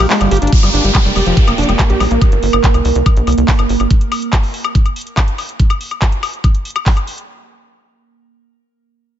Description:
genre	psychedelic trance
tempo	142 BPM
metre	4/4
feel	straight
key	G minor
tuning	A4 = 440 Hz
part	overtone-sweeping drone	sustained chords	0.0-5.6 s	Bb3 to Bb4	-19 LUFS	right 5 dB	chorus, built-in reverb, sidechain pumping
part	overdriven acid bass	riff	0.0-2.2 s	F3 to G4	-18 LUFS	equal	distortion, auto-pan, sidechain pumping, tape echo
part	tight sequencer bass	bass	0.0-3.9 s	F1 to C2	-16 LUFS	equal	none
part	drum and bass drum kit	drums	0.0-7.3 s	handclaps, hi-hat, woodblock	-20 LUFS	left 2 dB	none
part	electronic kick drum	drums	0.5-6.9 s	none	-12 LUFS	equal	none
part	downlifter	sound effects	0.5-3.9 s	none	-22 LUFS	equal	none
part	clear studio string section	texture	0.5-2.2 s	G4 to G5	-24 LUFS	left 1 dB	sidechain pumping
room	light reverb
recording	nothing above 7.7 kHz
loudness	-11 LUFS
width	side -11 dB against mid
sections	0.5-7.3 A section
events	break 0.0-0.5; drum fill 0.3; fade-out on string section 0.5-2.2; filter sweep on acid bass 0.5-2.2; filter sweep on synth drone 0.5-5.6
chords	0.0 G5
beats	0.10 | 0.53 0.95 1.37 1.79 | 2.21 2.64 3.06 3.48 | 3.90 4.33 4.75 5.17 | 5.59 6.02 6.44 6.86

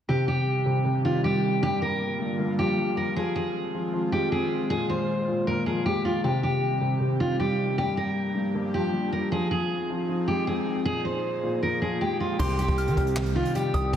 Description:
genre	hip hop, trap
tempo	156 BPM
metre	4/4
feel	half-time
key	C minor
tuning	A4 = 441 Hz
part	picked steel-string acoustic guitar	melody	0.1-14.0 s	F4 to C5	-27 LUFS	equal	low-pass filter
part	felt-muted upright piano	accompaniment	0.1-14.0 s	G2 to C4	-28 LUFS	left 1 dB	low-pass filter
part	airy breathy pad	sustained chords	0.5-14.0 s	D3 to Ab4	-31 LUFS	right 1 dB	chorus
part	soft synth bell	second line	12.4-13.9 s	C6 to F6	-34 LUFS	right 1 dB	chorus, phaser, analog delay
part	hard-hitting 808-style bass	bass	12.4-14.0 s	G1 to Eb3	-29 LUFS	equal	none
part	jazz brush drum kit	drums	12.4-14.0 s	crash cymbal, handclaps, hi-hat, kick drum, snare drum	-29 LUFS	equal	none
room	wet lush hall reverb, RT60 1.8 s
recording	dreamy mix soaked in reverb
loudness	-24 LUFS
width	side -9 dB against mid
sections	0.1-12.4 A section; 12.4-14.0 B section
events	none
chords	0.1 Cm; 1.6 Gm7; 3.2 Fm7; 4.7 Bb7sus4; 6.2 Cm; 7.8 Gm7; 9.3 Fm7; 10.9 Bb7sus4; 12.4 Cm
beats	| 0.09 0.47 0.86 1.24 | 1.62 2.01 2.39 2.78 | 3.16 3.55 3.93 4.32 | 4.70 5.09 5.47 5.86 | 6.24 6.62 7.01 7.39 | 7.78 8.16 8.55 8.93 | 9.32 9.70 10.09 10.47 | 10.86 11.24 11.62 12.01 | 12.39 12.78 13.16 13.55 | 13.93

